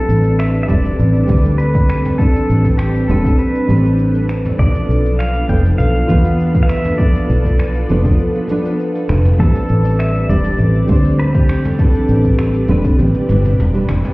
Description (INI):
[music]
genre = sunset chillout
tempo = 100 BPM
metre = 4/4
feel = straight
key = A minor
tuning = A4 = 439 Hz
[part]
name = pedal steel guitar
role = melody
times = 0.0-13.0 s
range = G4 to G5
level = -24 LUFS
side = left 1 dB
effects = digital delay
[part]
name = nylon-string guitar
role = accompaniment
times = 0.0-14.1 s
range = F3 to C5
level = -19 LUFS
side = right 1 dB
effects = auto-pan, digital delay
[part]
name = soft string machine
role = sustained chords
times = 0.0-14.1 s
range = G3 to D5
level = -24 LUFS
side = equal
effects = ensemble chorus
[part]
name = fingered electric bass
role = bass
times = 0.1-14.0 s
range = E1 to E2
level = -15 LUFS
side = equal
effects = none
[part]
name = soft brush drum kit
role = drums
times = 0.1-14.1 s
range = finger snaps, hi-hat, shaker, toms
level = -26 LUFS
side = equal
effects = none
[part]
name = electronic kick drum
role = drums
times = 0.7-13.0 s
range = none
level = -15 LUFS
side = equal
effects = overdrive
[sound]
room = light reverb, small room ambience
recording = heard muffled through a wall, stone room reverb, EQ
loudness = -12 LUFS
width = side -22 dB against mid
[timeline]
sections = 0.0-14.1 A section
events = kick drops out 13.0-14.1; drum fill 13.0-14.1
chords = 0.0 Am11; 4.6 Bm7b5; 9.4 Am11